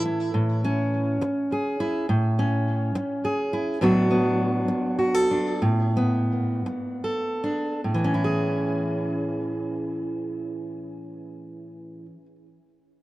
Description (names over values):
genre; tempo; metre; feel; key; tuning
folk, solo fingerstyle acoustic guitar; 47-70 BPM (dotted quarters); 6/8; rubato; A major; A4 = 445 Hz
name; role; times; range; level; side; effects
fingerpicked steel-string acoustic guitar; solo; 0.0-12.5 s; A2 to A4; -23 LUFS; equal; tape echo
room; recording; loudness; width
light reverb; dry, close 1970s-style studio recording; -22 LUFS; side -17 dB against mid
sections
0.3-7.8 A section; 7.8-12.8 B section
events
slowing down 3.8-7.8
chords
0.3 Amaj7; 3.8 D6/A; 7.8 Amaj7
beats
| 0.33 1.21 | 2.08 2.96 | 3.81 4.69 | 5.62 6.66 | 7.85 9.11 | 10.35 11.59